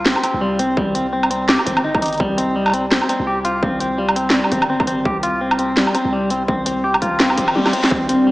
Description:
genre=half-time drum and bass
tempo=168 BPM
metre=4/4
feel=swing 58% on 16ths, half-time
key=C minor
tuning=A4 = 439 Hz
part: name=clean electric guitar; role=arpeggios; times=0.0-8.3 s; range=G3 to G4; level=-19 LUFS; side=equal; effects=analog delay
part: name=long sustained 808-style bass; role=bass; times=0.0-8.3 s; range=G1 to C2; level=-28 LUFS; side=equal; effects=tube saturation
part: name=drum and bass drum kit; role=drums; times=0.1-8.2 s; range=hi-hat, snare drum, toms, woodblock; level=-18 LUFS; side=equal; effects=none
part: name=electronic kick drum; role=drums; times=0.8-8.0 s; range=none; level=-24 LUFS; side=equal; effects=distortion, overdrive
part: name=reverse cymbal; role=sound effects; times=7.4-7.9 s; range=none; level=-28 LUFS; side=left 2 dB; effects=none
part: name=dark analog pad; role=sustained chords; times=7.9-8.3 s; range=C4 to D5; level=-15 LUFS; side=left 1 dB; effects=wide subtle chorus, sidechain pumping
room=wet lush hall reverb, RT60 1.7 s, digital ambience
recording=dreamy mix soaked in reverb, small speaker sound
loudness=-15 LUFS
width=side -18 dB against mid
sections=0.0-8.3 A section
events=reverse cymbal 7.4-7.9; drum fill 7.6-7.9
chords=0.0 C5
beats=0.06 0.41 | 0.77 1.13 1.48 1.84 | 2.20 2.56 2.91 3.27 | 3.63 3.98 4.34 4.70 | 5.05 5.41 5.77 6.13 | 6.48 6.84 7.20 7.55 | 7.91 8.27

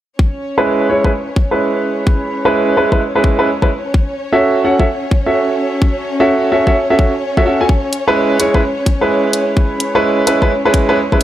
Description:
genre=UK garage, two-step garage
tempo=128 BPM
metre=4/4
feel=swing 64% on 16ths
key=C# minor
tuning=A4 = 441 Hz
part: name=rich studio violin section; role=sustained chords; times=0.2-11.2 s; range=C#4 to C#5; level=-22 LUFS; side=left 2 dB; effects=sidechain pumping
part: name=electronic kick drum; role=drums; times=0.2-11.2 s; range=none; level=-13 LUFS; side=left 1 dB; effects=overdrive, studio reverb
part: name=warm grand piano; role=stabs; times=0.6-11.2 s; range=G#3 to G#5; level=-13 LUFS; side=right 1 dB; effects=low-pass filter, tape echo
part: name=electronic hi-hat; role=drums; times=7.9-11.2 s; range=none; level=-18 LUFS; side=equal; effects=overdrive, studio reverb
room=light reverb, small room ambience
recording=dry, gritty hardware recording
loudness=-12 LUFS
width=side -12 dB against mid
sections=0.2-11.2 A section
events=none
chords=0.2 C#m7; 3.7 F#m7; 7.7 C#m7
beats=| 0.19 0.66 1.13 1.60 | 2.07 2.54 3.00 3.47 | 3.94 4.41 4.88 5.35 | 5.82 6.29 6.75 7.22 | 7.69 8.16 8.63 9.10 | 9.57 10.04 10.51 10.97

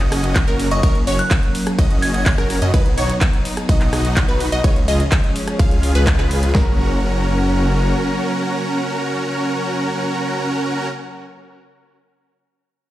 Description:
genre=EDM, festival progressive house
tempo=126 BPM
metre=4/4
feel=straight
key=F# major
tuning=A4 = 441 Hz
part: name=dark chamber string section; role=sustained chords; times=0.0-10.9 s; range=E#3 to D#4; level=-26 LUFS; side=left 1 dB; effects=sidechain pumping
part: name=wide unison pluck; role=arpeggios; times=0.0-10.9 s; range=A#4 to E#5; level=-26 LUFS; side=equal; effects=sidechain pumping, tape echo
part: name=dense compressed supersaw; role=riff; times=0.0-10.9 s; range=C#4 to E#5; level=-22 LUFS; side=right 1 dB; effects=sidechain pumping, tape echo
part: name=detuned saw bass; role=bass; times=0.0-7.9 s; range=F#1 to F#2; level=-20 LUFS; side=equal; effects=sidechain pumping
part: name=big-room dance drum kit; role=drums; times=0.0-6.5 s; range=handclaps, hi-hat, ride cymbal, rim click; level=-26 LUFS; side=equal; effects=none
part: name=big-room dance drum kit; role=drums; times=0.4-6.7 s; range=kick drum, snare drum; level=-16 LUFS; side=equal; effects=overdrive
part: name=glassy synth bell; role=melody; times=0.7-2.3 s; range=C#6 to G#6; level=-26 LUFS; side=right 1 dB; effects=chorus, tape echo
room=light reverb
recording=played on a big sound system in a bare room, stone room reverb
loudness=-15 LUFS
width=side -14 dB against mid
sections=0.0-6.5 A section; 6.5-10.4 B section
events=drop 0.0-6.5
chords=0.0 F#; 2.7 B; 4.6 C#; 6.5 F#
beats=0.36 | 0.83 1.31 1.79 2.26 | 2.74 3.21 3.69 4.17 | 4.64 5.12 5.59 6.07 | 6.55 7.02 7.50 7.98 | 8.45 8.93 9.40 9.88

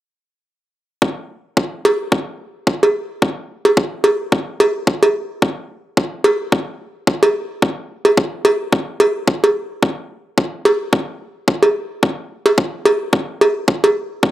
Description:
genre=nu-disco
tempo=109 BPM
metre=4/4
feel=swing 56% on 16ths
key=none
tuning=none
part: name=electronic kick drum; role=drums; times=1.0-14.3 s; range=none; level=-16 LUFS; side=left 1 dB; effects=high-pass filter on kick, high-pass filter on room
part: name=cowbell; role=percussion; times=1.9-13.9 s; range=none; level=-14 LUFS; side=right 1 dB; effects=none
room=light reverb, studio ambience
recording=dry, gritty hardware recording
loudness=-15 LUFS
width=side -14 dB against mid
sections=1.0-14.3 A section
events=none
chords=none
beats=| 1.02 1.57 2.12 2.67 | 3.22 3.77 4.32 4.87 | 5.42 5.97 6.53 7.08 | 7.63 8.18 8.73 9.28 | 9.83 10.38 10.93 11.48 | 12.03 12.58 13.13 13.68 | 14.23

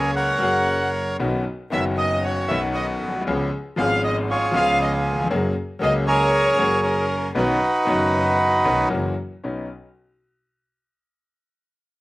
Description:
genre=tango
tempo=116 BPM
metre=4/4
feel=rubato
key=B major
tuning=A4 = 443 Hz
part: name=bandoneon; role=melody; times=0.0-8.9 s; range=C#4 to F#5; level=-20 LUFS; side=right 1 dB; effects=none
part: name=bright concert grand piano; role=accompaniment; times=0.0-9.7 s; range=F#1 to G#4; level=-24 LUFS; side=left 2 dB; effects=slapback echo
part: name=clear double bass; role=bass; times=0.0-9.7 s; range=F#1 to C#2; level=-28 LUFS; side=right 1 dB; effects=none
part: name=warm chamber violin section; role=second line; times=0.1-8.9 s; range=A#4 to F#5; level=-28 LUFS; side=left 1 dB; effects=slapback echo
room=little or no reverb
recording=recorded outdoors, with no room sound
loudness=-19 LUFS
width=side -19 dB against mid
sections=0.0-9.4 A section; 9.4-11.5 B section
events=none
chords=0.0 F#add9; 1.2 Badd9; 3.3 C#7; 5.3 F#add9; 7.3 Badd9; 8.9 F#7; 9.4 Badd9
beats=0.15 0.67 | 1.20 1.72 2.24 2.75 | 3.27 3.78 4.29 4.80 | 5.31 5.82 6.32 6.84 | 7.35 7.87 8.39 8.92 | 9.44

